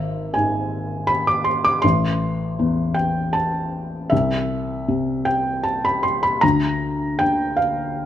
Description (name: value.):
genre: classical, romantic nocturne for solo piano.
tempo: 78 BPM.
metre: 3/4.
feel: rubato.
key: A minor.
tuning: A4 = 440 Hz.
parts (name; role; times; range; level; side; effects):
felt-muted upright piano; solo; 0.0-8.1 s; G#1 to D6; -18 LUFS; equal; none.
room: moderate recital hall reverb, RT60 1.6 s.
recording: close, detailed microphones.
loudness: -18 LUFS.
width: side -11 dB against mid.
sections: 0.0-8.1 A section.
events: none.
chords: 0.0 N.C.; 1.8 Am; 4.1 N.C..